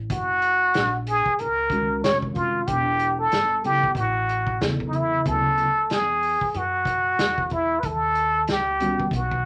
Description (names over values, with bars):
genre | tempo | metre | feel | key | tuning
hip hop, jazz-hop | 93 BPM | 4/4 | swing 58% on 16ths | unclear | A4 = 439 Hz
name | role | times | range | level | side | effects
upright bass | bass | 0.0-9.5 s | E1 to F#2 | -34 LUFS | equal | none
trumpet with plunger mute | melody | 0.1-9.5 s | Eb4 to Db5 | -24 LUFS | equal | none
vintage drum kit | drums | 0.1-9.4 s | hi-hat, kick drum, snare drum | -31 LUFS | equal | none
mellow tine electric piano | accompaniment | 1.7-9.1 s | Db3 to Ab5 | -30 LUFS | equal | none
room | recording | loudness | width
moderate studio reverb, RT60 0.5 s | none | -23 LUFS | mono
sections
0.0-9.5 A section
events
none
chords
0.1 Gbmaj7; 2.7 Em; 4.0 A69; 5.3 Dmaj9; 7.8 Eb7alt